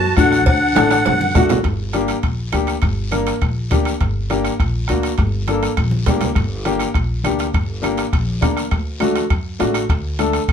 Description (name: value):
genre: latin, cumbia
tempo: 204 BPM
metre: 4/4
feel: straight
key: G harmonic minor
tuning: A4 = 440 Hz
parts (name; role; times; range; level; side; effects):
- musette accordion; melody; 0.0-1.5 s; F#5 to A5; -19 LUFS; right 1 dB; none
- breathy clarinet; second line; 0.0-1.5 s; D4 to F#4; -18 LUFS; left 5 dB; none
- upright bass; bass; 0.0-10.5 s; G1 to F#2; -22 LUFS; equal; none
- warm upright piano; accompaniment; 0.2-10.4 s; A3 to Bb4; -20 LUFS; left 3 dB; none
- bombo; percussion; 0.2-10.5 s; none; -20 LUFS; equal; none
- congas; percussion; 0.2-10.5 s; none; -27 LUFS; right 2 dB; none
- guiro; percussion; 0.2-10.5 s; none; -34 LUFS; left 4 dB; none
- cowbell and timbales; percussion; 0.5-10.5 s; none; -27 LUFS; right 6 dB; none
room: moderate studio ambience, RT60 0.5 s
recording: band playing live in one room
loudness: -16 LUFS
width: side -8 dB against mid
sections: 0.0-1.6 A section; 1.6-10.5 B section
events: drum fill 0.8-1.6, 5.9-6.4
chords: 0.0 D; 1.6 Gm; 8.7 D